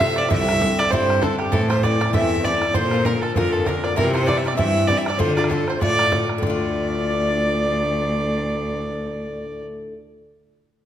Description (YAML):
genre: celtic folk, Celtic reel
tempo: 196 BPM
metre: 4/4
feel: swing 57% on 8ths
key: D minor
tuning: A4 = 441 Hz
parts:
  - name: rich fiddle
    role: melody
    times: 0.0-9.6 s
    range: G4 to E5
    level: -23 LUFS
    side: right 3 dB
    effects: none
  - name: bluegrass banjo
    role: second line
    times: 0.0-9.6 s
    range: G4 to E5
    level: -30 LUFS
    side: right 5 dB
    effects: none
  - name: reedy baroque flute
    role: second line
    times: 0.0-9.6 s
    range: G4 to E5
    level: -27 LUFS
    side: left 2 dB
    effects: none
  - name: Irish bouzouki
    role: accompaniment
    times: 0.0-10.0 s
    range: G2 to F4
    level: -25 LUFS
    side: left 4 dB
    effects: none
  - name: rich cello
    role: bass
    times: 0.0-9.6 s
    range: C2 to D3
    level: -24 LUFS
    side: equal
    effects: none
  - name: bodhran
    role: percussion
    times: 0.0-6.6 s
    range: none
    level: -26 LUFS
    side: right 2 dB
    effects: none
room: wet recital hall reverb, RT60 1.7 s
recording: minimal, uncompressed stereo recording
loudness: -18 LUFS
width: side -10 dB against mid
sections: 0.0-6.4 A section; 6.4-8.9 B section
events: none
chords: 0.3 Cadd9; 1.5 Am; 2.7 Bb; 4.0 C; 5.2 Dm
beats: 0.00 | 0.31 0.61 0.92 1.22 | 1.53 1.83 2.14 2.44 | 2.75 3.05 3.36 3.66 | 3.97 4.27 4.58 4.88 | 5.19 5.50 5.80 6.11 | 6.42 6.72 7.03 7.33 | 7.64 7.95 8.26 8.56